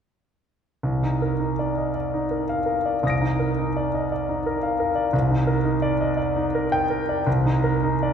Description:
classical, impressionist solo piano; 84 BPM; 3/4; uneven beats, rubato; C minor; A4 = 439 Hz
clear concert grand piano; solo; 0.8-8.1 s; C2 to D7; -20 LUFS; equal
wet scoring stage reverb, RT60 1.9 s; heard from further back in the room; -21 LUFS; side -7 dB against mid
0.8-8.1 A section
0.8 Cm11; 5.1 Cm9
| 0.84 1.58 2.31 | 3.03 3.75 4.45 | 5.13 5.82 6.54 | 7.27 8.01

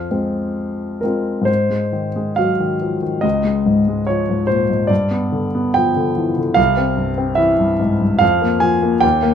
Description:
classical, romantic character piece for solo piano; 64-75 BPM; 2/4; rubato; A4 = 440 Hz
warm concert grand piano; solo; 0.0-9.3 s; C2 to Ab5; -15 LUFS; equal
moderate large studio reverb, RT60 0.9 s; minimal, uncompressed stereo recording; -15 LUFS; side -8 dB against mid
0.0-1.5 A section; 1.5-9.3 B section
0.0 Fm; 1.5 Ab7; 3.2 Db; 4.9 G7; 6.6 C; 8.2 Bb5/F
0.57 | 1.48 2.39 | 3.24 4.08 | 4.90 5.77 | 6.58 7.40 | 8.22 9.03

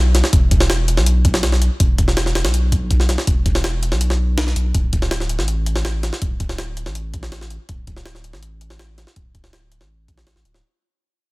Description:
drum and bass, jungle; 163 BPM; 4/4; straight; A4 = 438 Hz
saturated sub bass; bass; 0.0-10.6 s; D1 to B1; -19 LUFS; equal
jungle sampler-style drum kit; drums; 0.1-10.6 s; hi-hat, kick drum, snare drum; -18 LUFS; equal; small room ambience
digital ambience; dense, heavily limited modern master; -16 LUFS; side -24 dB against mid
0.0-10.6 A section
fade-out 0.0-10.6
| 0.33 0.69 1.06 1.43 | 1.80 2.17 2.54 2.90 | 3.27 3.64 4.01 4.38 | 4.74 5.11 5.48 5.85 | 6.22 6.58 6.95 7.32 | 7.69 8.06 8.43 8.79 | 9.16 9.53 9.90 10.27

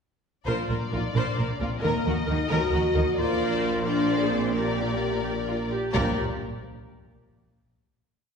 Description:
cinematic, heroic adventure film score; 88 BPM (dotted quarters); 6/8; straight; Bb major; A4 = 437 Hz
rich symphonic violin section; melody; 0.5-6.2 s; D5 to Eb5; -33 LUFS; left 5 dB
clear symphonic violin section; second line; 0.5-6.2 s; Eb4 to C5; -32 LUFS; left 2 dB
rich symphonic viola section; accompaniment; 0.5-6.2 s; F4 to Bb4; -32 LUFS; equal
mellow French horn section; sustained chords; 0.5-6.1 s; Bb3 to Gb4; -29 LUFS; left 2 dB
clear symphonic double bass section; bass; 0.5-6.2 s; Bb1 to Eb2; -30 LUFS; right 2 dB
rich symphonic cello section; bass; 0.5-6.2 s; Bb2 to Eb3; -31 LUFS; right 3 dB
wet scoring stage reverb, RT60 1.6 s; heard from further back in the room; -23 LUFS; side -6 dB against mid
0.5-5.9 theme; 5.9-7.3 final chord
0.5 Bbadd9; 1.8 Ebm; 3.2 Bbadd9; 4.5 Bb6; 5.9 Bb5
| 0.47 1.15 | 1.83 2.51 | 3.18 3.85 | 4.54 5.25 | 5.94

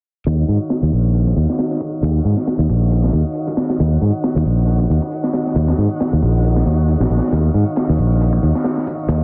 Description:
breakbeat, breaks; 136 BPM; 4/4; swing 55% on 16ths; A4 = 439 Hz
tonewheel organ; sustained chords; 0.3-9.2 s; Eb3 to Gb5; -27 LUFS; equal; slow rotary speaker, vintage 12-bit sampler grit, sidechain pumping
modern bright fingered electric bass; bass; 0.3-9.2 s; Bb1 to Ab2; -17 LUFS; equal; low-pass filter
crunchy breakbeat drum kit; drums; 0.3-9.2 s; hi-hat, kick drum, snare drum; -25 LUFS; equal; high-pass filter on kick, high-pass filter on hats, high-pass filter on snare, high-pass filter on room
tambourine; drums; 0.3-9.2 s; -65 LUFS; equal
light reverb; dense, heavily limited modern master, low-pass filter; -17 LUFS; mono
0.3-9.2 A section
filter sweep on fingered electric bass 0.3-9.2; filter sweep 0.3-9.2
0.3 Ebm7
| 0.26 0.71 1.15 1.59 | 2.03 2.47 2.91 3.35 | 3.79 4.24 4.68 5.12 | 5.56 6.00 6.44 6.88 | 7.32 7.76 8.21 8.65 | 9.09

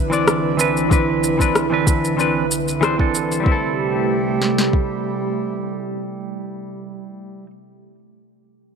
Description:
sunset chillout; 94 BPM; 4/4; swing 53% on 16ths; A minor; A4 = 438 Hz
airy breathy pad; sustained chords; 0.0-6.8 s; C2 to B4; -22 LUFS; right 3 dB; chorus
semi-hollow electric guitar; accompaniment; 0.1-7.5 s; E3 to D5; -22 LUFS; left 1 dB; auto-pan, low-pass filter, digital delay
electronic shaker and rim click; drums; 0.1-3.4 s; -23 LUFS; left 1 dB; overdrive
smooth R&B drum kit; drums; 0.9-4.9 s; kick drum, snare drum; -18 LUFS; left 1 dB; overdrive
moderate plate reverb, RT60 3.1 s; -17 LUFS; side -6 dB against mid
0.0-3.5 A section; 3.5-6.0 B section
0.0 Cmaj9; 3.5 Am7
0.27 | 0.91 1.54 2.18 2.82 | 3.46 4.10 4.74 5.38

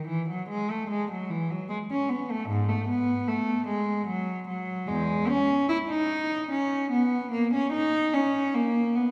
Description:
classical, baroque-style suite movement for unaccompanied cello; 74 BPM; 3/4; rubato; A4 = 440 Hz
rich cello; solo; 0.0-9.1 s; E2 to E4; -27 LUFS; equal
wet concert hall reverb, RT60 2.2 s; heard from further back in the room; -27 LUFS; mono
0.0-9.1 A section
| 0.07 0.88 1.69 | 2.50 3.29 4.09 | 4.89 5.70 6.51 | 7.32 8.12 8.94

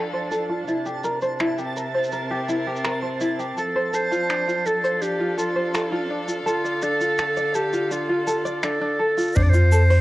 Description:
folktronica; 83 BPM; 4/4; straight; F major; A4 = 439 Hz
bright string quartet; sustained chords; 0.0-9.4 s; C3 to F5; -32 LUFS; equal; low-pass filter, cassette tape
tenor ukulele; arpeggios; 0.0-10.0 s; D4 to D5; -25 LUFS; equal; low-pass filter, cassette tape, analog delay
twinkling granular texture; texture; 0.0-9.4 s; A5; -34 LUFS; right 3 dB; built-in reverb, cassette tape
jazz brush drum kit; drums; 0.3-10.0 s; finger snaps, hi-hat, shaker; -32 LUFS; equal; low-pass filter on hats, cassette tape, low-pass filter on toms, low-pass filter on snare, low-pass filter on perc, low-pass filter on room
bright clarinet; melody; 3.6-10.0 s; F4 to D5; -24 LUFS; right 1 dB; cassette tape
warm sub bass; bass; 9.4-10.0 s; F2; -14 LUFS; equal
kick drum; drums; 9.4-9.5 s; -23 LUFS; equal; cassette tape
light reverb, small room ambience; home recording on cassette; -20 LUFS; side -17 dB against mid
0.0-9.4 A section
filter sweep on ukulele 0.0-9.4; filter sweep on string quartet 0.0-9.4
0.0 F6; 0.7 C7; 3.6 F6; 6.5 Dm; 9.4 F6
| 0.68 1.41 2.13 2.85 | 3.57 4.30 5.02 5.74 | 6.47 7.19 7.91 8.63 | 9.36

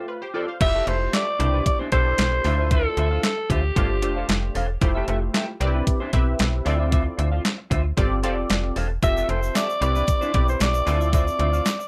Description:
early-eighties boogie funk; 114 BPM; 4/4; straight; C major; A4 = 441 Hz
funky polysynth comp; accompaniment; 0.0-11.7 s; B2 to F5; -31 LUFS; equal; chorus
semi-hollow electric guitar; riff; 0.0-11.8 s; D4 to F5; -33 LUFS; equal; analog chorus
growling alto saxophone; melody; 0.6-4.6, 9.0-11.9 s; G4 to E5; -26 LUFS; equal
slap-like FM bass; bass; 0.6-11.6 s; E1 to D2; -26 LUFS; equal
detuned 8-bit digital drum machine; drums; 0.6-11.8 s; crash cymbal, handclaps, hi-hat, kick drum, snare drum; -25 LUFS; equal; overdrive
egg shaker; percussion; 9.0-11.9 s; -45 LUFS; equal
light reverb; -22 LUFS; mono
0.6-11.9 A section
break 0.0-0.6
0.0 G9sus4; 0.6 Fmaj9; 1.4 Cmaj9; 2.4 Dm9; 3.8 G9sus4; 4.8 Fmaj9; 5.6 Cmaj9; 6.7 Dm9; 8.0 G9sus4; 9.0 Fmaj9; 9.8 Cmaj9; 10.9 Dm9
0.08 | 0.61 1.13 1.66 2.19 | 2.71 3.24 3.76 4.29 | 4.82 5.34 5.87 6.40 | 6.92 7.45 7.97 8.50 | 9.03 9.55 10.08 10.61 | 11.13 11.66

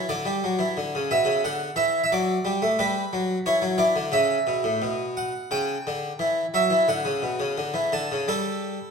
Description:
classical, baroque-style suite movement for harpsichord; 88 BPM; 4/4; rubato; A4 = 440 Hz
harpsichord; solo; 0.0-8.9 s; A2 to A5; -22 LUFS; equal
wet recital hall reverb, RT60 1.4 s; minimal, uncompressed stereo recording; -22 LUFS; side -5 dB against mid
0.0-8.9 A section
0.1 Bm (rootless); 2.8 Em; 5.5 C#dim; 6.9 D; 8.3 Gsus2
| 0.08 0.76 1.43 2.11 | 2.79 3.46 4.13 4.81 | 5.50 6.19 6.88 7.56 | 8.26

